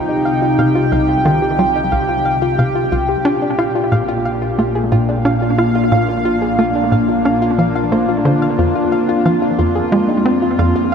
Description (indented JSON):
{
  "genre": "ambient, sequencer-driven space music",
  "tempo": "90 BPM",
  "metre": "4/4",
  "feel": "straight",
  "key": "unclear",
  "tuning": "A4 = 440 Hz",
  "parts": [
    { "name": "lush unison pad", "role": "sustained chords", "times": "0.0-10.9 s", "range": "Bb2 to G5", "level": "-16 LUFS", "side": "equal", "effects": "chorus" },
    { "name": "soft round pluck", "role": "arpeggios", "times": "0.0-10.9 s", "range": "D4 to F5", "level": "-21 LUFS", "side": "moving between left 6 dB and right 3 dB", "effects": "chorus, auto-pan, analog delay" },
    { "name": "tight sequencer bass", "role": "riff", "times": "0.0-10.7 s", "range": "C2 to F4", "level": "-18 LUFS", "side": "equal", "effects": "analog delay" },
    { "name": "analog drone", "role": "bass", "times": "0.0-10.9 s", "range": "Bb1 to F2", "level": "-28 LUFS", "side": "right 1 dB", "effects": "chorus" }
  ],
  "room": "wet cathedral reverb, RT60 7.4 s",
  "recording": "dreamy mix soaked in reverb",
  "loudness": "-13 LUFS",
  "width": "side -7 dB against mid",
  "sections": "0.0-10.9 A section",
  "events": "filter sweep on analog synth bass 0.0-10.9",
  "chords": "0.0 Cm; 3.3 Bb; 8.6 Fm"
}